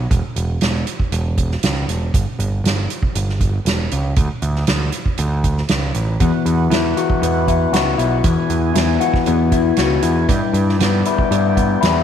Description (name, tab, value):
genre	psychedelic rock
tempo	118 BPM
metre	4/4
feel	straight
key	unclear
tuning	A4 = 439 Hz
part	growling picked electric bass	bass	0.0-12.0 s	E1 to G2	-19 LUFS	right 1 dB	overdrive
part	soft-mallet drum kit	drums	0.1-11.9 s	hi-hat, kick drum, snare drum	-20 LUFS	right 2 dB	none
part	tonewheel organ	sustained chords	6.2-12.0 s	E4 to G#5	-24 LUFS	right 9 dB	slow rotary speaker
part	electric guitar through a small old amp	riff	6.2-12.0 s	E2 to F#4	-17 LUFS	left 10 dB	phaser
room	light reverb, studio ambience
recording	1960s-style stereo with parts hard left and right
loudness	-15 LUFS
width	side -9 dB against mid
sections	0.0-12.0 A section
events	none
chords	0.0 E5; 2.1 N.C.; 4.2 D5; 6.2 Esus2; 10.3 G6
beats	| 0.10 0.61 1.12 1.63 | 2.13 2.64 3.15 3.66 | 4.17 4.67 5.18 5.69 | 6.20 6.71 7.22 7.73 | 8.24 8.75 9.26 9.78 | 10.29 10.80 11.31 11.82